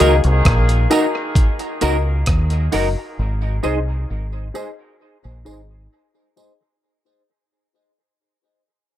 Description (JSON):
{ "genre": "dub reggae", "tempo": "66 BPM", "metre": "4/4", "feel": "straight", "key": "unclear", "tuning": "A4 = 440 Hz", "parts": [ { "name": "semi-hollow electric guitar", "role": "accompaniment", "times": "0.0-6.6 s", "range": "Eb4 to C5", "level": "-24 LUFS", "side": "right 5 dB", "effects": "ensemble chorus, low-pass filter, dub echo" }, { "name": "dark grand piano", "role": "stabs", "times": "0.0-6.5 s", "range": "Eb4 to Eb5", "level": "-24 LUFS", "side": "left 6 dB", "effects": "low-pass filter, dub echo" }, { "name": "deep dub fingered electric bass", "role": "bass", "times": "0.0-5.9 s", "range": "Gb1 to Eb2", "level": "-18 LUFS", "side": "equal", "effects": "none" }, { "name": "breakbeat sampler-style drum kit", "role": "drums", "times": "0.0-2.9 s", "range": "hi-hat, kick drum, rim click", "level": "-18 LUFS", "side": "equal", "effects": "none" }, { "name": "tambourine and woodblock", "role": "percussion", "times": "0.0-6.6 s", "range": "none", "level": "-32 LUFS", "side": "right 4 dB", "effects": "dub echo" } ], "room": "light reverb, small room ambience", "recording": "none", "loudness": "-16 LUFS", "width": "side -12 dB against mid", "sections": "0.0-6.8 A section", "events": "fade-out 0.0-6.8; filter sweep 0.0-6.8; break 3.2-6.8", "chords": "0.0 Ebm; 3.2 Ab" }